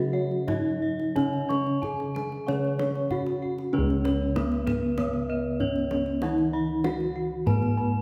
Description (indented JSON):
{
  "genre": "Javanese gamelan",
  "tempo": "86-97 BPM",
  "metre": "4/4",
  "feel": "straight",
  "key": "Db slendro",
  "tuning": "A4 = 442 Hz",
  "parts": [
    { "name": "gamelan-type bronze metallophone", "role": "melody", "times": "0.0-8.0 s", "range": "Cb4-45c to Db5", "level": "-31 LUFS", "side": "equal", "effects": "none" },
    { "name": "gamelan-type bronze metallophone", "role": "accompaniment", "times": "0.0-8.0 s", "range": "Db3 to Db4", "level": "-36 LUFS", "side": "equal", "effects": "none" },
    { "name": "gamelan-type bossed gongs", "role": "arpeggios", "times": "0.0-8.0 s", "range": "Cb5-45c to Db6", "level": "-38 LUFS", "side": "equal", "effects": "none" },
    { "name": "gamelan-type bronze metallophone", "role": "arpeggios", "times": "0.0-8.0 s", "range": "Cb5-45c to Db6", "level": "-39 LUFS", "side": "equal", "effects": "none" },
    { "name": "gamelan-type bossed gongs", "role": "bass", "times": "0.0-8.0 s", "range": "Db2 to Gb4-35c", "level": "-33 LUFS", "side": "equal", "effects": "none" },
    { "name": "kendang", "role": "percussion", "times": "0.3-7.7 s", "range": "none", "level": "-36 LUFS", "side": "equal", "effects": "none" }
  ],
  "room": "wet recital hall reverb, RT60 1.7 s",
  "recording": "recorded in a church or concert hall",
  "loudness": "-27 LUFS",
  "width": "mono",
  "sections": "0.0-3.7 A section; 3.7-8.0 B section",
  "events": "none",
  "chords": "none",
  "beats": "0.48 | 1.16 1.83 2.48 3.12 | 3.74 4.36 4.98 5.60 | 6.22 6.84 7.46"
}